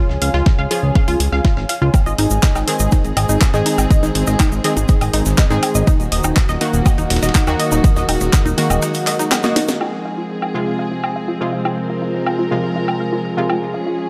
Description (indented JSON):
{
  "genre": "melodic techno",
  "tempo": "122 BPM",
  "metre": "4/4",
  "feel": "straight",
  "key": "F phrygian",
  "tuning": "A4 = 439 Hz",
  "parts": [
    { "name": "tight sequenced synth", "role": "arpeggios", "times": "0.0-14.0 s", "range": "Eb4 to F5", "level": "-26 LUFS", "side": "equal", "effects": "chorus, phaser, sidechain pumping, digital delay" },
    { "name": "synth brass stab", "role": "stabs", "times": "0.0-13.7 s", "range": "C3 to Ab4", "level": "-26 LUFS", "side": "equal", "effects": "chorus, sidechain pumping, digital delay" },
    { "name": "warbly tape-like pad", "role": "texture", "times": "0.0-14.1 s", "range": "Eb4 to Db6", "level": "-30 LUFS", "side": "equal", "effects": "chorus, built-in reverb, sidechain pumping" },
    { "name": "fat analog bass", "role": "bass", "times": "0.1-8.8 s", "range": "Eb1 to Ab2", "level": "-21 LUFS", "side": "equal", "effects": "sidechain pumping" },
    { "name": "dusty soul sampler-style drum kit", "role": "drums", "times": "0.1-14.1 s", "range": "hi-hat, ride cymbal, snare drum", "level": "-34 LUFS", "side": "equal", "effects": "none" },
    { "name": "house drum kit", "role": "drums", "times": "0.2-13.6 s", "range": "handclaps, hi-hat, snare drum, woodblock", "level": "-24 LUFS", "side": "equal", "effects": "sidechain pumping on hats, low-pass filter on hats, sidechain pumping on perc, low-pass filter on perc, low-pass filter on snare, low-pass filter on room" },
    { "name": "electronic kick drum", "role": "drums", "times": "0.5-8.4 s", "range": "none", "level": "-16 LUFS", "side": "equal", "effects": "none" },
    { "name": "dark chamber string section", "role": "sustained chords", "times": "1.9-14.1 s", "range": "Eb3 to Bb4", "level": "-26 LUFS", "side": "equal", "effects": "sidechain pumping" },
    { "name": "egg shaker", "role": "percussion", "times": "1.9-9.8 s", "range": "none", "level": "-30 LUFS", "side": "equal", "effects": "none" }
  ],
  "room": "light reverb",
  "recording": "none",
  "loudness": "-17 LUFS",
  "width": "mono",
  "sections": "0.0-9.8 A section; 9.8-14.1 B section",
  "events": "drum fill 9.3-9.8; band accent 9.7; filter sweep on synth arpeggio sound 9.8-14.1",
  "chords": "0.0 Db; 1.9 Ab; 5.9 Ebm; 9.8 Fm",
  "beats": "0.46 0.95 1.45 | 1.94 2.43 2.92 3.41 | 3.90 4.40 4.89 5.38 | 5.87 6.36 6.86 7.35 | 7.84 8.33 8.82 9.31 | 9.81 10.30 10.79 11.28 | 11.77 12.27 12.76 13.25 | 13.74"
}